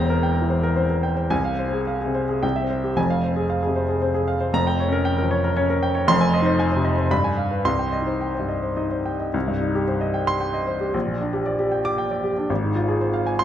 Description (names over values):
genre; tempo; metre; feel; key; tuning
classical, virtuoso piano study; 103-118 BPM; 3/4; rubato; F minor, C minor from 6.1 s; A4 = 442 Hz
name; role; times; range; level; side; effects
warm baby grand piano; solo; 0.0-13.4 s; E1 to D6; -20 LUFS; equal; none
room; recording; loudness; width
wet recital hall reverb, RT60 1.6 s; none; -20 LUFS; side -10 dB against mid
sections
0.0-9.3 A section; 9.3-13.4 B section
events
none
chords
0.0 C7/E; 1.3 Fm/C; 2.4 C; 3.0 Fm; 4.5 Gm7b5/F; 6.1 Fm7; 7.1 G7b9; 7.7 Cm; 10.9 Gm/Bb; 12.5 Fm/Ab